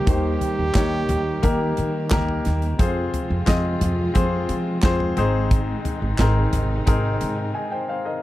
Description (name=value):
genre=piano-driven pop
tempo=88 BPM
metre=4/4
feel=straight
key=unclear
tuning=A4 = 441 Hz
part: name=warm trumpet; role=melody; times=0.0-2.1 s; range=G4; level=-26 LUFS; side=right 3 dB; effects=none
part: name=clear baby grand piano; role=accompaniment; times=0.0-8.2 s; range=Ab2 to Ab5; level=-25 LUFS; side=left 4 dB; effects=none
part: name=warm studio string section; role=sustained chords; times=0.0-8.2 s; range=C3 to G4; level=-31 LUFS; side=right 5 dB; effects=none
part: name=upright bass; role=bass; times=0.1-7.5 s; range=Ab1 to F3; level=-23 LUFS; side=equal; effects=none
part: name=modern studio drum kit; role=drums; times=0.1-7.4 s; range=handclaps, hi-hat, kick drum, snare drum, toms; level=-22 LUFS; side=equal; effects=none
room=little or no reverb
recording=dry, close 1970s-style studio recording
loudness=-19 LUFS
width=side -15 dB against mid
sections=0.0-8.2 A section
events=break 7.6-8.2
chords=0.0 Eb; 2.8 Fm; 5.2 Ab